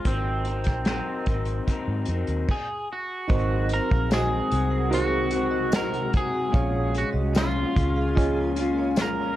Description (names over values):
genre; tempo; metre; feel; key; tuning
indie pop, bedroom pop; 74 BPM; 4/4; straight; unclear; A4 = 441 Hz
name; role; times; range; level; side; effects
electric guitar at the edge of break-up; melody; 0.0-9.4 s; C4 to Bb4; -29 LUFS; right 1 dB; lush chorus, plate reverb
electric guitar through a small old amp; accompaniment; 0.0-9.4 s; Ab2 to Bb4; -29 LUFS; left 4 dB; lush chorus, warbly pitch drift, plate reverb
vintage muted fingered electric bass; bass; 0.1-9.3 s; Ab1 to Ab2; -28 LUFS; equal; none
unplugged drum kit; drums; 0.1-9.2 s; crash cymbal, hi-hat, kick drum, snare drum; -26 LUFS; equal; vintage 12-bit sampler grit
vibraphone with medium hard mallets; second line; 3.3-9.2 s; F4 to Gb5; -34 LUFS; right 5 dB; analog chorus, tape echo, plate reverb
reed electric piano; accompaniment; 3.3-9.4 s; Db4 to Ab5; -32 LUFS; right 4 dB; plate reverb
shimmering ambient pad; sustained chords; 4.4-9.4 s; C3 to Ab5; -36 LUFS; equal; chorus, built-in reverb, plate reverb
tambourine; percussion; 4.1-9.2 s; none; -43 LUFS; left 4 dB; none
room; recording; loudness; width
moderate small room reverb, RT60 0.5 s; cassette tape; -22 LUFS; side -14 dB against mid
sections
0.0-3.3 A section; 3.3-9.4 B section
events
stop 2.5-3.3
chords
0.1 Ab9; 3.3 Ab7; 6.5 Bbm7